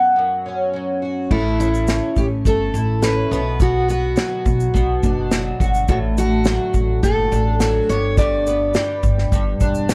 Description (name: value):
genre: acoustic pop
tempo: 105 BPM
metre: 4/4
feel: straight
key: unclear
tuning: A4 = 440 Hz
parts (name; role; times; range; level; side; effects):
- fingerpicked twelve-string acoustic guitar; accompaniment; 0.0-9.9 s; F#2 to F#4; -24 LUFS; equal; double-tracked
- picked steel-string acoustic guitar; melody; 1.3-9.9 s; E4 to D5; -24 LUFS; equal; digital delay
- upright bass; bass; 1.3-9.9 s; E1 to B1; -24 LUFS; equal; none
- unplugged drum kit; drums; 1.3-9.9 s; crash cymbal, kick drum, shaker, snare drum; -23 LUFS; equal; none
room: small room ambience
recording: worn, warbling old tape, cassette tape, warbly pitch drift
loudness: -19 LUFS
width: mono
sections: 0.0-1.3 A section; 1.3-9.9 B section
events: none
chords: 0.0 F#sus4; 1.3 A; 3.3 Bm; 5.9 D/A; 7.9 G